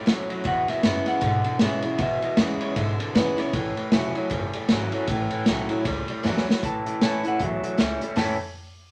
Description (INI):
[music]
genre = rockabilly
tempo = 156 BPM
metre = 4/4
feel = swing 60% on 8ths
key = A major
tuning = A4 = 440 Hz
[part]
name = picked steel-string acoustic guitar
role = accompaniment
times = 0.0-8.4 s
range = E2 to E4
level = -32 LUFS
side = equal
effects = none
[part]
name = electric guitar through a small old amp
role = riff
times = 0.0-8.4 s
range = E2 to E4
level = -32 LUFS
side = equal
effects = none
[part]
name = upright bass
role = bass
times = 0.1-8.4 s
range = E1 to B2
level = -34 LUFS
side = equal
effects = none
[part]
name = vintage drum kit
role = drums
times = 0.1-8.3 s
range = hi-hat, kick drum, ride cymbal, snare drum, toms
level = -28 LUFS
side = equal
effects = none
[part]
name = electric guitar through a small old amp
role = melody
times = 0.5-8.4 s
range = B4 to A5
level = -31 LUFS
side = equal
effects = none
[sound]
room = moderate studio reverb, RT60 0.7 s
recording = none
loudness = -24 LUFS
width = mono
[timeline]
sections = 0.0-6.6 A section; 6.6-8.2 B section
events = drum fill 6.2-6.6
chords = 0.5 E; 3.5 A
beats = 0.07 | 0.46 0.84 1.23 1.61 | 2.00 2.38 2.77 3.15 | 3.54 3.93 4.31 4.70 | 5.08 5.47 5.85 6.24 | 6.63 7.01 7.40 7.79 | 8.17